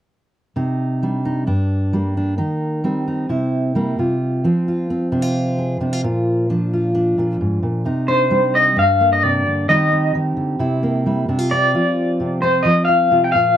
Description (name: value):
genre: folk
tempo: 132 BPM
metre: 4/4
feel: straight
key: C minor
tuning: A4 = 435 Hz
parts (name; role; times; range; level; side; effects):
- fingerpicked steel-string acoustic guitar; accompaniment; 0.6-13.6 s; G2 to Ab4; -18 LUFS; equal; none
- electric guitar through a small old amp; melody; 8.1-13.6 s; C5 to G5; -15 LUFS; left 1 dB; tremolo, slapback echo
room: light reverb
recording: dry, close 1970s-style studio recording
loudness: -16 LUFS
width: side -10 dB against mid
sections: 0.6-7.9 A section; 7.9-13.6 B section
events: none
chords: 0.6 Cmadd9; 1.5 Gm; 2.4 Eb6; 3.3 C7; 4.0 F5/C; 6.0 Bb; 7.9 Cmadd9; 8.8 Gm; 9.7 Eb6; 10.6 C7; 11.3 F5/C